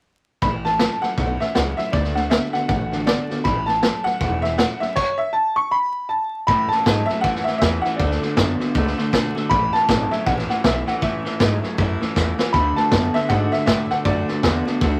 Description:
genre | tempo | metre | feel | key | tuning
rockabilly | 158 BPM | 4/4 | swing 60% on 8ths | A major | A4 = 440 Hz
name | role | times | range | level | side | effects
clear upright piano | melody | 0.4-14.6 s | C#5 to C#6 | -24 LUFS | equal | none
picked steel-string acoustic guitar | accompaniment | 0.4-15.0 s | A2 to F#4 | -32 LUFS | equal | none
electric guitar through a small old amp | riff | 0.4-15.0 s | A2 to B3 | -28 LUFS | equal | none
upright bass | bass | 0.4-15.0 s | E1 to A2 | -27 LUFS | equal | none
vintage drum kit | drums | 0.4-14.9 s | crash cymbal, hi-hat, kick drum, snare drum | -25 LUFS | equal | none
room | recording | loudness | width
light reverb | vinyl crackle | -20 LUFS | mono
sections
0.4-6.5 A section; 6.5-15.0 B section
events
drum fill 12.2-12.5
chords
0.4 A; 1.9 D; 3.5 A; 8.0 D; 9.5 A; 12.5 D

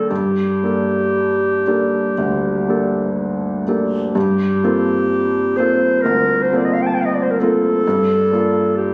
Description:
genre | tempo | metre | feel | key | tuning
classical, impressionist duo for clarinet and grand piano | 56-67 BPM | 4/4 | rubato | G minor | A4 = 436 Hz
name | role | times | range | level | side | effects
mellow clarinet | melody | 0.0-8.9 s | G4 to A5 | -20 LUFS | equal | none
clear baby grand piano | accompaniment | 0.0-8.9 s | D2 to Bb4 | -20 LUFS | equal | none
room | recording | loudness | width
moderate recital hall reverb, RT60 1.6 s | recorded on a phone in the room, studio reverb, compression | -17 LUFS | mono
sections
0.0-4.2 A section; 4.2-8.9 A section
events
none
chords
0.1 Gmadd9; 4.2 Gm11; 7.8 Bbmaj7/G

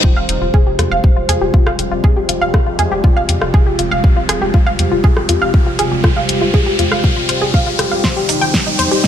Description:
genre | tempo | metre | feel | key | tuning
melodic techno | 120 BPM | 4/4 | straight | F minor | A4 = 439 Hz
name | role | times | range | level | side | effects
sweeping resonant pad | sustained chords | 0.0-9.1 s | C3 to G4 | -20 LUFS | left 1 dB | chorus, phaser, sidechain pumping
analog pluck | arpeggios | 0.0-9.1 s | Eb4 to G5 | -18 LUFS | equal | chorus, sidechain pumping, digital delay
tight sequencer bass | bass | 0.0-9.1 s | Eb1 to F2 | -23 LUFS | equal | sidechain pumping
electronic kick drum | drums | 0.0-9.1 s | none | -12 LUFS | equal | none
reverse cymbal and riser | sound effects | 0.0-9.1 s | none | -22 LUFS | left 1 dB | none
deep dark ambient pad | texture | 0.0-9.1 s | C4 to Eb5 | -26 LUFS | right 1 dB | chorus, built-in reverb, sidechain pumping
house drum kit | drums | 0.3-9.1 s | hi-hat, rim click, shaker, snare drum | -19 LUFS | left 1 dB | none
room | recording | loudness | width
light reverb, digital ambience | high-pass filter | -12 LUFS | side -10 dB against mid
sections
0.0-9.1 A section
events
build-up 0.0-9.1; riser 0.0-9.1; filter sweep 0.0-9.1; drum fill 8.0-9.1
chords
0.0 Fmadd9; 8.0 Cm/F

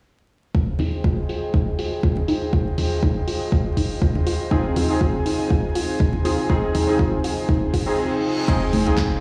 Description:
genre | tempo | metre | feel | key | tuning
deep house | 121 BPM | 4/4 | swing 55% on 16ths | F minor | A4 = 445 Hz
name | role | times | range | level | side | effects
airy breathy pad | sustained chords | 0.5-9.2 s | F4 to Ab5 | -32 LUFS | equal | chorus, sidechain pumping
soft round pluck | arpeggios | 0.5-7.8 s | Eb4 to F4 | -31 LUFS | equal | chorus, sidechain pumping, tape echo
electronic kick drum | drums | 0.5-9.1 s | none | -23 LUFS | equal | none
deep house drum kit | drums | 0.8-9.1 s | crash cymbal, handclaps, hi-hat | -37 LUFS | equal | low-pass filter on hats, low-pass filter on cymbals, low-pass filter on snare
congas | percussion | 0.8-8.8 s | none | -27 LUFS | equal | none
warm analog keys | stabs | 4.5-9.2 s | C4 to Ab4 | -24 LUFS | equal | chorus, tape echo
reverse cymbal | sound effects | 7.8-8.5 s | none | -37 LUFS | equal | none
warm sub bass | bass | 8.5-9.2 s | F1 to C2 | -26 LUFS | equal | sidechain pumping
room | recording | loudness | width
light reverb, digital ambience | played on a big sound system in a bare room, large studio reverb, vinyl crackle, small room ambience | -21 LUFS | mono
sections
0.5-8.5 A section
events
filter sweep on analog synth pad 0.5-8.5; filter sweep on synth arpeggio sound 0.5-8.5; reverse cymbal 7.8-8.5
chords
0.5 Fm7

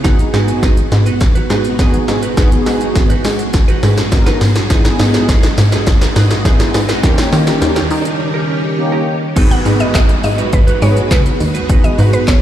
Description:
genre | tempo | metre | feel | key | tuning
dance-pop | 103 BPM | 4/4 | straight | G# minor | A4 = 440 Hz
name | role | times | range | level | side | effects
mellow synth brass | accompaniment | 0.0-12.4 s | A#3 to B4 | -20 LUFS | left 1 dB | chorus, sidechain pumping
string machine, full ensemble | sustained chords | 0.0-12.4 s | D#3 to D#5 | -21 LUFS | equal | ensemble chorus, sidechain pumping
direct-recorded clean electric guitar | riff | 0.0-12.3 s | C#4 to B4 | -24 LUFS | right 7 dB | lush chorus
plucky analog bass | bass | 0.0-12.4 s | G#1 to D#3 | -15 LUFS | equal | sidechain pumping
punchy analog drum machine | drums | 0.0-12.4 s | crash cymbal, handclaps, hi-hat, kick drum, shaker, snare drum | -14 LUFS | equal | none
riser and downlifter | sound effects | 2.8-12.4 s | none | -25 LUFS | equal | none
mallet-like synth pluck | melody | 9.5-12.4 s | B4 to F#5 | -21 LUFS | right 1 dB | chorus, ping-pong delay
room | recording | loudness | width
light reverb | played on a big sound system in a bare room, stone room reverb, lossy compression artefacts | -10 LUFS | side -11 dB against mid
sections
0.0-9.4 A section; 9.4-12.4 B section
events
build-up 0.0-9.4; drum fill 0.0-8.2; break 8.2-9.4; drop 9.4-12.4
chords
0.0 G#m7; 4.7 Emaj7/G#; 7.0 D#7; 9.4 G#m7

